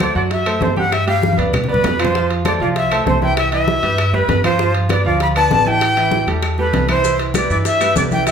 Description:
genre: latin, salsa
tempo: 196 BPM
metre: 4/4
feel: straight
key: C major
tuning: A4 = 437 Hz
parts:
  - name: breathy bright jazz flute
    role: melody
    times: 0.0-8.3 s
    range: B4 to B5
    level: -18 LUFS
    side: left 1 dB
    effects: none
  - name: bright concert grand piano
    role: accompaniment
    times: 0.0-8.3 s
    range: E3 to G5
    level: -20 LUFS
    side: right 4 dB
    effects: none
  - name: upright bass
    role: bass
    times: 0.0-8.3 s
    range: A1 to G2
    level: -21 LUFS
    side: equal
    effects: none
  - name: bongos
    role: percussion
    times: 0.0-8.3 s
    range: none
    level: -27 LUFS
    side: left 5 dB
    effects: none
  - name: claves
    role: percussion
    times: 0.0-8.3 s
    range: none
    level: -30 LUFS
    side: left 3 dB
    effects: none
  - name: congas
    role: percussion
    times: 0.0-8.3 s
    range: none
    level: -24 LUFS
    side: left 2 dB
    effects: none
  - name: timbales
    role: percussion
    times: 0.0-8.3 s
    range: none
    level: -27 LUFS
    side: right 4 dB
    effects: none
  - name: maracas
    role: percussion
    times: 7.0-8.3 s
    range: none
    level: -28 LUFS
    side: left 6 dB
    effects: none
room: wet large studio reverb, RT60 0.9 s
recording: band playing live in one room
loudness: -14 LUFS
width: side -7 dB against mid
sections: 0.0-8.3 A section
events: drum fill 1.2-2.1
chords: 0.0 D9; 0.9 G7; 2.1 Fmaj7; 3.4 Cmaj7; 4.6 G13; 5.8 Am7; 7.0 Cmaj7

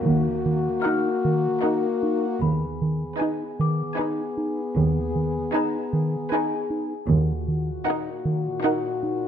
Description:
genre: cinematic, suspense film score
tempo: 77 BPM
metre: 3/4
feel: straight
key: Eb harmonic minor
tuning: A4 = 440 Hz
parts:
  - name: warm French horn section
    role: sustained chords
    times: 0.0-9.3 s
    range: Bb2 to Ab4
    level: -27 LUFS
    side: left 4 dB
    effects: none
  - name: muted chamber cello section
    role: bass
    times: 0.0-7.7 s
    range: Eb2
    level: -33 LUFS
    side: right 4 dB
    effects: none
  - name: muted studio double bass section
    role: bass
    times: 0.0-7.7 s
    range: Eb2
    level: -28 LUFS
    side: right 4 dB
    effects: none
  - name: worn celesta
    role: texture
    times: 0.0-9.3 s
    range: Ab4 to F6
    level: -34 LUFS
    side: left 7 dB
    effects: none
  - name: round analog bass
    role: riff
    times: 0.1-9.3 s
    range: Eb3 to Eb4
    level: -25 LUFS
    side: right 1 dB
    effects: none
  - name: muted studio violin section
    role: melody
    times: 0.8-9.2 s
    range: Gb5 to Ab5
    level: -33 LUFS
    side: left 3 dB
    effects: none
  - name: muted studio violin section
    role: second line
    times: 0.8-9.2 s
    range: Bb4 to Cb5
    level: -33 LUFS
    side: left 2 dB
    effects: none
  - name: muted studio viola section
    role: accompaniment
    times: 0.8-9.2 s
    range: Eb4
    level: -30 LUFS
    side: right 4 dB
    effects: none
room: light reverb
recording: close, detailed microphones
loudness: -22 LUFS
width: side -9 dB against mid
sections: 0.0-9.3 A section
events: none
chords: 0.0 Ebm; 2.4 Abm/Eb; 7.1 Ebm

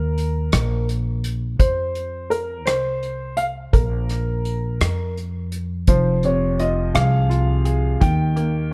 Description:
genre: six-eight pop ballad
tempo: 56 BPM (dotted quarters)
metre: 6/8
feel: straight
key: F minor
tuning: A4 = 440 Hz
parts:
  - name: warm baby grand piano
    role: melody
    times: 0.0-8.7 s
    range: Bb4 to G5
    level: -27 LUFS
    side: equal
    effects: none
  - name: upright bass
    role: bass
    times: 0.0-8.7 s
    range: F1 to F2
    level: -24 LUFS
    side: equal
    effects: none
  - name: unplugged drum kit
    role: drums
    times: 0.2-8.5 s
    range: hi-hat, kick drum, rim click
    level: -21 LUFS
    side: equal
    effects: none
  - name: bright upright piano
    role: accompaniment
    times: 5.9-8.7 s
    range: C3 to Ab4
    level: -27 LUFS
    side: equal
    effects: none
room: little or no reverb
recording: dark, warm production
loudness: -21 LUFS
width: mono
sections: 0.0-8.7 A section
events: none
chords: 0.0 Eb5; 1.6 F5; 3.7 Bb5; 5.9 Fm; 8.0 Eb

